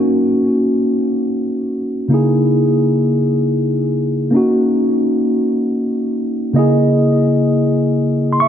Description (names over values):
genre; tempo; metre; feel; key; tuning
R&B; 54 BPM (dotted quarters); 6/8; straight; C# dorian; A4 = 440 Hz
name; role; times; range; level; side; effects
mellow tine electric piano; solo; 0.0-8.5 s; C#3 to C#6; -13 LUFS; equal; wide subtle chorus, diffuse ambient delay
room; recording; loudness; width
wet plate reverb, RT60 3.3 s; dreamy mix soaked in reverb; -13 LUFS; side -9 dB against mid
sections
0.0-8.5 A section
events
none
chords
0.0 D#m7; 2.1 C#m69; 4.3 D#m7; 6.6 C#m69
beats
1.00 | 2.11 3.22 | 4.33 5.44 | 6.55 7.66